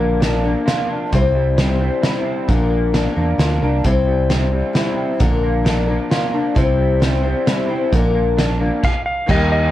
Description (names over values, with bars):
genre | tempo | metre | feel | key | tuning
folk rock and heartland rock | 132 BPM | 3/4 | straight | unclear | A4 = 442 Hz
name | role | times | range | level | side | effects
picked steel-string acoustic guitar | accompaniment | 0.0-9.7 s | Bb2 to C5 | -20 LUFS | left 4 dB | none
electric guitar through a small old amp | riff | 0.0-9.7 s | Bb2 to G4 | -23 LUFS | right 2 dB | analog chorus
fingered electric bass | bass | 0.0-9.7 s | Bb1 to E2 | -19 LUFS | right 1 dB | none
loose indie drum kit | drums | 0.2-9.4 s | crash cymbal, hi-hat, kick drum, snare drum | -20 LUFS | equal | none
clean lap steel guitar | melody | 8.8-9.7 s | Eb5 to F5 | -20 LUFS | equal | none
room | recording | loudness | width
light reverb | worn, warbling old tape, cassette tape, warbly pitch drift | -15 LUFS | side -13 dB against mid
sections
0.0-9.3 A section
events
none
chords
0.0 Bb; 1.1 C; 2.5 Bb; 3.8 C; 5.2 Bb; 6.6 C; 7.9 Bb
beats
0.22 0.67 | 1.12 1.58 2.03 | 2.48 2.94 3.39 | 3.84 4.29 4.75 | 5.20 5.65 6.11 | 6.56 7.01 7.47 | 7.92 8.38 8.83 | 9.28